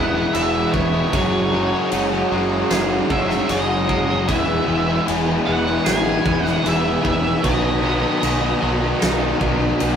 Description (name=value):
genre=rock, shoegaze and dream pop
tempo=76 BPM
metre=4/4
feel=straight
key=E major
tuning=A4 = 440 Hz
part: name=octave-fuzz lead guitar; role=melody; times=0.0-10.0 s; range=C#5 to G#5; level=-26 LUFS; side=right 2 dB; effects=distortion
part: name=phased string machine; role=sustained chords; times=0.0-10.0 s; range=F#4 to C#6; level=-33 LUFS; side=right 1 dB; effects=none
part: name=twangy electric guitar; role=arpeggios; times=0.0-10.0 s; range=E3 to G#4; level=-31 LUFS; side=right 5 dB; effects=none
part: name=cranked stack guitar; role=riff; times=0.0-10.0 s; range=E2 to B3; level=-26 LUFS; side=right 1 dB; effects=none
part: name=overdriven electric guitar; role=riff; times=0.0-10.0 s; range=B2 to F#4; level=-22 LUFS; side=left 5 dB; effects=none
part: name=overdriven electric guitar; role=riff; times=0.0-10.0 s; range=E2 to G#4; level=-24 LUFS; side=right 6 dB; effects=none
part: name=growling fingered electric bass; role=bass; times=0.0-10.0 s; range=E1 to B1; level=-26 LUFS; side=equal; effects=overdrive
part: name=huge arena drum kit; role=drums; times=0.3-10.0 s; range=crash cymbal, kick drum, snare drum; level=-24 LUFS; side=equal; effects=none
room=moderate studio reverb, RT60 0.6 s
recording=rough rehearsal-room recording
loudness=-16 LUFS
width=side -8 dB against mid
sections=0.0-10.0 A section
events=none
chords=0.0 E; 1.1 F#sus2; 4.3 E; 7.4 B